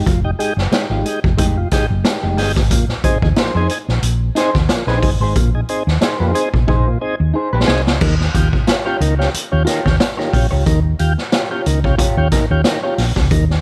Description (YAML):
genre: funk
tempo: 91 BPM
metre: 4/4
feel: swing 56% on 16ths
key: Eb mixolydian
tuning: A4 = 440 Hz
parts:
  - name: electric guitar at the edge of break-up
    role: accompaniment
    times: 0.0-13.0 s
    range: Ab3 to Db5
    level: -25 LUFS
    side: equal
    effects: harmonic tremolo
  - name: hollow-body short-scale fingered electric bass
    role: bass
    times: 0.0-13.6 s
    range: F1 to F2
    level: -19 LUFS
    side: equal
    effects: none
  - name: tonewheel organ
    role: stabs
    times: 0.1-13.4 s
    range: Bb2 to Ab4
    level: -24 LUFS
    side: equal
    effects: slow rotary speaker
  - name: raw garage drum kit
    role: drums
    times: 0.1-13.6 s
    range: crash cymbal, hi-hat, kick drum, snare drum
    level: -20 LUFS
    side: equal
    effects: none
room: light reverb, studio ambience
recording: none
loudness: -16 LUFS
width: mono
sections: 0.0-8.0 A section; 8.0-13.6 B section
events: drum fill 6.7-8.0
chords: 0.0 Fm9; 2.7 Bb9sus4; 8.0 Eb9